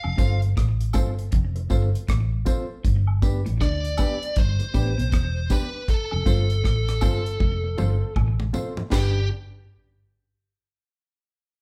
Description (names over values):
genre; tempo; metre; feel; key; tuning
roots reggae; 79 BPM; 4/4; swing 62% on 16ths; G mixolydian; A4 = 440 Hz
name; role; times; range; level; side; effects
biting lead guitar; melody; 0.0-9.3 s; G4 to F5; -32 LUFS; equal; overdrive
clean electric guitar; riff; 0.0-8.4 s; E2 to D3; -37 LUFS; equal; slapback echo
woodblock and tambourine; percussion; 0.0-9.3 s; none; -41 LUFS; equal; none
vintage muted fingered electric bass; bass; 0.1-9.3 s; E1 to D2; -26 LUFS; equal; none
mellow electric guitar; accompaniment; 0.2-9.2 s; B3 to D5; -35 LUFS; equal; slapback echo
reed electric piano; stabs; 0.2-9.2 s; D4 to C5; -36 LUFS; equal; none
deep reggae drum kit; drums; 0.2-9.1 s; crash cymbal, hi-hat, kick drum, rim click, snare drum, toms; -26 LUFS; equal; none
room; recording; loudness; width
moderate large studio reverb, RT60 1.1 s; band playing live in one room; -23 LUFS; mono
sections
0.0-8.9 A section; 8.9-11.6 B section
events
drum fill 7.4-8.9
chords
0.0 F; 2.8 G; 5.9 F; 8.9 G